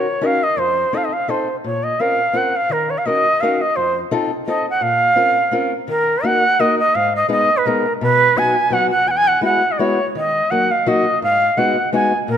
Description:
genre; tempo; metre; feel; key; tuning
musette waltz; 169 BPM; 3/4; straight; Bb harmonic minor, Eb minor from 5.9 s; A4 = 440 Hz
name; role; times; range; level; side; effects
reedy shakuhachi; melody; 0.0-12.4 s; Bb4 to G#5; -16 LUFS; right 1 dB; none
fingerpicked old ladder-braced acoustic guitar; accompaniment; 0.0-12.4 s; E2 to Bb4; -21 LUFS; left 3 dB; none
room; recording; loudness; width
moderate scoring stage reverb, RT60 1.6 s; none; -14 LUFS; side -8 dB against mid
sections
0.0-5.9 A section; 5.9-12.4 B section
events
none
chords
0.0 Ebm7; 0.6 F7; 1.6 Bbmadd9; 2.7 Ebm7; 3.8 F7; 4.8 Bbmadd9; 5.9 Ebm; 7.0 Abm; 8.0 B; 9.1 Eadd9; 10.1 Ebm; 11.2 Abm7

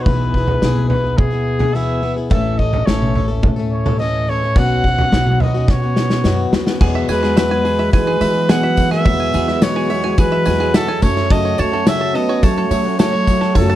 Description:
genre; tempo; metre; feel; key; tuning
indie folk with a building arrangement; 107 BPM; 4/4; straight; E major; A4 = 442 Hz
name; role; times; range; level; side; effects
warm trumpet; melody; 0.0-13.8 s; G#4 to F#5; -20 LUFS; equal; none
picked plugged-in swing-style acoustic guitar; accompaniment; 0.0-13.8 s; E2 to A4; -22 LUFS; left 6 dB; none
upright bass; bass; 0.0-13.8 s; A1 to F#3; -20 LUFS; equal; none
loose indie drum kit; drums; 0.1-13.7 s; crash cymbal, hi-hat, kick drum, snare drum, toms; -18 LUFS; equal; none
bluegrass banjo; arpeggios; 6.8-13.8 s; G#4 to A5; -25 LUFS; right 7 dB; none
warm trombone; second line; 7.1-13.8 s; F#3 to C#4; -23 LUFS; right 7 dB; none
tambourine; percussion; 7.1-13.8 s; none; -38 LUFS; left 12 dB; none
room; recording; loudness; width
small room ambience; none; -14 LUFS; side -13 dB against mid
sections
0.0-6.8 A section; 6.8-13.8 B section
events
drum fill 5.7-6.8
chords
0.1 E/B; 2.3 A; 4.6 Bsus2; 6.8 Eadd9; 11.0 F#m

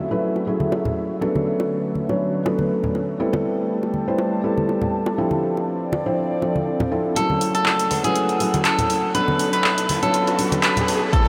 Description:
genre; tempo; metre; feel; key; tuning
deep house; 121 BPM; 4/4; swing 55% on 16ths; F# minor; A4 = 444 Hz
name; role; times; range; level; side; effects
warbly tape-like pad; sustained chords; 0.0-11.3 s; D3 to E6; -30 LUFS; equal; chorus, built-in reverb, phaser, sidechain pumping
felt-muted upright piano; stabs; 0.0-11.3 s; F3 to C#5; -25 LUFS; equal; sidechain pumping, low-pass filter, analog delay
bongos and congas; percussion; 0.4-11.3 s; none; -30 LUFS; equal; none
clean electric guitar; melody; 7.2-11.3 s; G#4 to B4; -24 LUFS; equal; tape echo
modern bright fingered electric bass; bass; 7.2-11.3 s; F#1 to C#2; -33 LUFS; equal; none
punchy analog drum machine; drums; 7.2-11.2 s; handclaps, hi-hat; -26 LUFS; equal; none
riser; sound effects; 8.9-11.3 s; none; -32 LUFS; equal; none
electronic kick drum; drums; 11.1-11.2 s; none; -18 LUFS; equal; none
room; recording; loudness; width
wet huge ambient reverb, RT60 8.2 s; dreamy mix soaked in reverb; -21 LUFS; mono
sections
0.0-7.2 A section; 7.2-11.3 B section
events
filter sweep on ambient pad 0.0-7.2; build-up 7.2-11.3; riser 8.9-11.3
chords
0.0 F#m7; 1.2 Bm7; 3.2 Am7; 5.2 Dm7; 7.2 F#m7; 9.1 Bm7

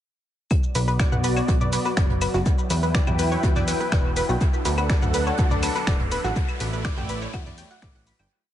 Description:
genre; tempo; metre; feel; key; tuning
melodic techno; 123 BPM; 4/4; straight; B minor; A4 = 440 Hz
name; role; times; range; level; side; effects
lush unison pad; sustained chords; 0.5-8.3 s; A3 to G5; -29 LUFS; equal; chorus, phaser, sidechain pumping
overtone-sweeping drone; drone; 1.3-8.4 s; B2 to F#3; -36 LUFS; right 1 dB; none
electronic kick drum; drums; 0.5-7.9 s; none; -22 LUFS; equal; none
punchy analog drum machine; drums; 0.5-8.3 s; claves, finger snaps, hi-hat, shaker, toms; -30 LUFS; equal; dub echo
vintage brush drum kit; drums; 0.5-8.2 s; hi-hat, snare drum; -42 LUFS; left 2 dB; none
riser; sound effects; 3.0-8.3 s; none; -40 LUFS; equal; none
analog pluck; arpeggios; 0.8-8.3 s; F#4 to B5; -28 LUFS; equal; chorus, sidechain pumping, tape echo
plucky analog bass; bass; 0.8-8.3 s; D1 to E2; -26 LUFS; equal; sidechain pumping
room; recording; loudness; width
light reverb; echo-heavy mix, nothing above 11.0 kHz; -20 LUFS; side -11 dB against mid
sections
0.5-8.3 build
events
build-up 0.5-8.3; riser 3.0-8.3; fade-out 5.7-8.3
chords
0.5 Bm; 2.5 Em; 4.4 D; 6.4 Asus4

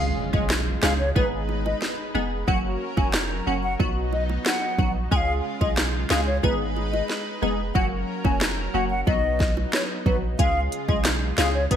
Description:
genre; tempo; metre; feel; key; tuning
dancehall; 91 BPM; 4/4; straight; unclear; A4 = 440 Hz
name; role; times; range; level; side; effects
hollow wooden flute; melody; 0.0-11.8 s; B4 to G#5; -28 LUFS; left 2 dB; ping-pong delay
wavetable chord stab; accompaniment; 0.0-11.8 s; F#3 to G#4; -28 LUFS; equal; analog chorus
lush unison pad; sustained chords; 0.0-11.8 s; C#3 to B4; -33 LUFS; equal; chorus, sidechain pumping
punchy sub bass; bass; 0.0-11.8 s; E#1 to C#2; -27 LUFS; equal; none
impact; sound effects; 0.0-2.5 s; none; -35 LUFS; right 1 dB; none
afro-pop drum kit; drums; 0.3-11.8 s; hi-hat, kick drum, rim click, snare drum; -24 LUFS; equal; gated reverb
bongos; percussion; 0.3-11.8 s; none; -36 LUFS; right 9 dB; none
room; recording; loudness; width
light reverb, digital ambience; bright 1980s-style digital production; -21 LUFS; side -9 dB against mid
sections
0.0-11.8 A section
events
break 0.0-10.4; impact 0.0-2.5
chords
0.0 C#; 1.2 G#m; 2.5 F#; 3.8 B; 5.1 C#; 6.4 G#m; 7.8 F#; 9.1 B; 10.4 C#

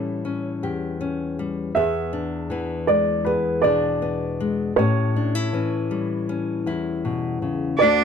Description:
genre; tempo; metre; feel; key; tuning
acoustic folk-pop ballad; 80 BPM; 4/4; straight; unclear; A4 = 440 Hz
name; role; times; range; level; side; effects
dark baby grand piano; melody; 0.0-8.0 s; C#4 to E5; -22 LUFS; right 2 dB; none
nylon-string guitar; accompaniment; 0.0-8.0 s; D2 to G4; -24 LUFS; left 3 dB; none
bright cello; second line; 7.8-8.0 s; D4; -18 LUFS; right 5 dB; none
room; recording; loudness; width
light reverb; close, detailed microphones; -21 LUFS; side -7 dB against mid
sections
0.0-7.8 A section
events
none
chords
0.0 A7; 1.8 E7; 4.8 A7

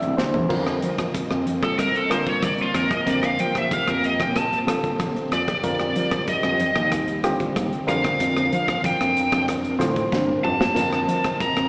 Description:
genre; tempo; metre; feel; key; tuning
electric jazz fusion; 94 BPM; 4/4; straight; F mixolydian; A4 = 444 Hz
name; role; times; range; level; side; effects
overdriven reed electric piano; accompaniment; 0.0-11.6 s; D3 to E5; -29 LUFS; equal; plate reverb
string machine, violas; sustained chords; 0.0-11.7 s; C3 to Eb5; -34 LUFS; equal; ensemble chorus, plate reverb
woody fretless electric bass; bass; 0.0-11.7 s; Bb1 to F3; -29 LUFS; equal; none
modern studio drum kit; drums; 0.0-11.7 s; crash cymbal, hi-hat, kick drum, rim click, snare drum, toms; -30 LUFS; equal; slapback echo
congas; percussion; 0.2-11.2 s; none; -36 LUFS; equal; none
smooth overdriven lead guitar; melody; 1.6-11.7 s; F4 to Bb5; -26 LUFS; equal; plate reverb, slapback echo, tape echo
room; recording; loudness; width
light reverb; live gig heard through the venue's PA, recital hall reverb, small speaker sound; -22 LUFS; mono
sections
0.5-11.7 A section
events
reed electric piano fill 0.0-0.5; lead electric guitar solo 0.0-11.7; drum fill 0.2-0.5, 10.1-10.8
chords
0.5 F7sus4; 3.1 Bbmaj13; 5.6 Ebmaj13; 7.9 Bbadd9/F; 10.8 F7sus4

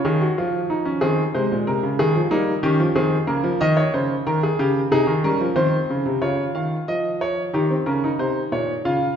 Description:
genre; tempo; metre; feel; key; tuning
classical, baroque-style 3-part fugue for grand piano; 92 BPM; 4/4; straight; Db major; A4 = 442 Hz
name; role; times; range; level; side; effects
clear grand piano; solo; 0.0-9.2 s; Bb2 to F5; -18 LUFS; equal; none
room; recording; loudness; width
wet recital hall reverb, RT60 1.8 s; recorded in a church or concert hall, nothing above 7.5 kHz; -18 LUFS; side -8 dB against mid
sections
0.0-6.2 A section; 6.2-9.2 B section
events
none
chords
0.0 Db; 1.0 Ab; 2.3 Eb; 3.6 Eb7; 4.9 Ab/C; 6.2 Db; 7.5 Cm

